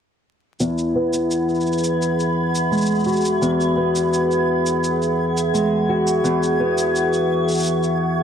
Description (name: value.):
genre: folktronica.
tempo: 85 BPM.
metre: 4/4.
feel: straight.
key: E major.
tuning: A4 = 445 Hz.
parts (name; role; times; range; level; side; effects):
warbly tape-like pad; sustained chords; 1.1-8.2 s; G#4 to C#6; -23 LUFS; right 1 dB; chorus, built-in reverb.
fingerpicked twelve-string acoustic guitar; arpeggios; 0.6-8.2 s; E2 to F#4; -19 LUFS; left 1 dB; low-pass filter, tape echo.
shaker; drums; 0.6-8.0 s; none; -30 LUFS; right 1 dB; none.
backwards swelling texture; texture; 1.2-8.2 s; G#6; -31 LUFS; equal; built-in reverb.
room: light reverb.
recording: dry, close 1970s-style studio recording, vinyl crackle.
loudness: -17 LUFS.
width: side -8 dB against mid.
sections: 0.6-8.2 A section.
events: filter sweep on twelve-string acoustic guitar 0.6-8.2.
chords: 0.6 Eadd9.